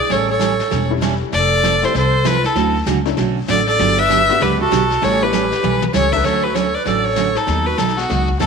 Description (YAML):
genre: country, western swing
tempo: 195 BPM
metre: 4/4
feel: swing 62% on 8ths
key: D major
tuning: A4 = 440 Hz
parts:
  - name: clear fiddle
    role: melody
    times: 0.0-8.5 s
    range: F#4 to E5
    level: -18 LUFS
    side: left 4 dB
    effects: slapback echo
  - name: breathy clarinet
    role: second line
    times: 0.0-8.5 s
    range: B3 to B4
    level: -22 LUFS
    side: right 10 dB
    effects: none
  - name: honky-tonk upright piano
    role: accompaniment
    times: 0.0-6.5 s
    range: E3 to A4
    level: -26 LUFS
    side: left 13 dB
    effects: none
  - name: picked steel-string acoustic guitar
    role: accompaniment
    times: 0.1-8.5 s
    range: D3 to A4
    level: -21 LUFS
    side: right 12 dB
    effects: none
  - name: upright bass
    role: bass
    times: 0.1-8.5 s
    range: E1 to D#2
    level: -21 LUFS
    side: left 1 dB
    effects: none
  - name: vintage brush drum kit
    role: drums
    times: 0.1-8.5 s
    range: brushed snare drum, crash cymbal, hi-hat, kick drum, snare drum, toms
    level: -27 LUFS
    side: left 10 dB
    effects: none
room: moderate echo chamber reverb, RT60 1.7 s, small room ambience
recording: 1960s-style stereo with parts hard left and right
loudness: -14 LUFS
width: side -5 dB against mid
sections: 0.0-6.3 A section; 6.3-8.5 B section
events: drum fill 5.6-5.9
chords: 0.1 A7; 1.3 Fmaj7; 2.6 Dmaj7; 3.8 Gmaj9; 5.0 A9; 6.3 Dmaj7; 7.5 B7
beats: | 0.11 0.41 0.72 1.03 | 1.33 1.64 1.95 2.26 | 2.56 2.87 3.18 3.49 | 3.79 4.10 4.41 4.72 | 5.02 5.33 5.64 5.95 | 6.25 6.56 6.87 7.18 | 7.49 7.80 8.11 8.41